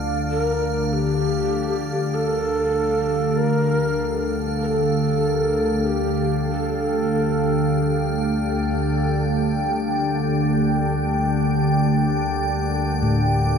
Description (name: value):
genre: dark ambient drone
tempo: free time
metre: none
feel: none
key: D minor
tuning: A4 = 441 Hz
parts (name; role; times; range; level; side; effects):
- dark analog pad; sustained chords; 0.0-13.6 s; D4 to G5; -29 LUFS; right 1 dB; chorus
- gamelan-type bossed gongs; arpeggios; 0.0-1.5, 13.0-13.6 s; A2 to F4; -20 LUFS; left 2 dB; none
- organ-like drone; drone; 0.0-13.6 s; D2 to D3; -22 LUFS; equal; ensemble chorus, built-in reverb
- icy glass pad; texture; 0.0-13.6 s; F5 to G5; -29 LUFS; right 2 dB; chorus, built-in reverb
- breathy mellow shakuhachi; melody; 0.3-8.4 s; G4 to Bb4; -24 LUFS; equal; tape echo
room: wet spring reverb, RT60 2.6 s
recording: echo-heavy mix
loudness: -19 LUFS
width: side -6 dB against mid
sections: 0.0-13.6 A section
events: fade-in on analog synth pad 0.0-13.6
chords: 0.0 Dm; 8.4 Gm/D